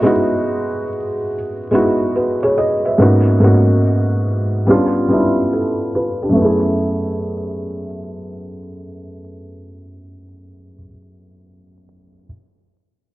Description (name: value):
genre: hip hop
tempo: 71 BPM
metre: 4/4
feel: swing 66% on 16ths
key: F# dorian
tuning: A4 = 440 Hz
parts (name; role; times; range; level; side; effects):
- felt-muted upright piano; accompaniment; 0.0-12.3 s; F#2 to E5; -15 LUFS; equal; cassette tape, low-pass filter
room: moderate plate reverb, RT60 2.6 s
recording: vinyl crackle, low-pass filter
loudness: -14 LUFS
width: side -17 dB against mid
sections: 0.0-6.4 A section; 6.4-9.7 B section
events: filter sweep 0.0-6.4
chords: 0.0 Emaj9; 3.0 G#m11; 4.7 G7#11; 6.4 F#m11